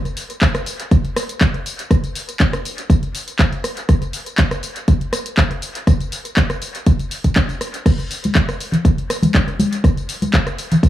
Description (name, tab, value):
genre	nu-disco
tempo	121 BPM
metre	4/4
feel	straight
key	none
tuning	none
part	house drum kit	drums	0.1-10.9 s	crash cymbal, handclaps, hi-hat, rim click, tambourine	-22 LUFS	equal	small room reverb, dub echo
part	electronic kick drum	drums	0.4-10.9 s	none	-15 LUFS	equal	small room reverb
part	congas	percussion	8.3-10.8 s	none	-18 LUFS	left 1 dB	none
room	digital ambience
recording	echo-heavy mix, small room ambience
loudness	-16 LUFS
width	side -13 dB against mid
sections	0.0-10.9 A section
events	none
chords	none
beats	0.42 0.91 1.41 | 1.91 2.40 2.90 3.39 | 3.89 4.38 4.88 5.38 | 5.87 6.37 6.86 7.36 | 7.86 8.35 8.85 9.34 | 9.84 10.34 10.83